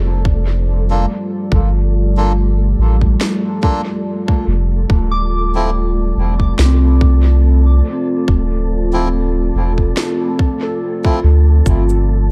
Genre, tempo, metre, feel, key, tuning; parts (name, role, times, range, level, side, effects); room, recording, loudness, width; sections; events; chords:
ambient dub; 71 BPM; 4/4; swing 55% on 16ths; A4 = 440 Hz
deep dark ambient pad; sustained chords; 0.0-12.3 s; G3 to D5; -24 LUFS; equal; chorus, built-in reverb
soft synth bell; arpeggios; 0.0-12.3 s; C4 to D6; -28 LUFS; equal; chorus, phaser, dub echo
soft dub sub bass; bass; 0.0-12.3 s; D1 to D2; -15 LUFS; equal; tube saturation
wind-like tuned noise texture; texture; 0.0-12.3 s; A3 to A4; -29 LUFS; equal; built-in reverb
electronic kick drum; drums; 0.3-11.8 s; -18 LUFS; equal
melodica; stabs; 0.9-11.2 s; F3 to A4; -26 LUFS; equal; dub echo
electronic snare drum and shaker; drums; 3.2-12.0 s; -26 LUFS; equal; dub echo
digital ambience; dark, warm production; -15 LUFS; mono
0.0-12.3 A section
0.0 G7(no3); 4.9 Dm7; 11.7 G7(no3)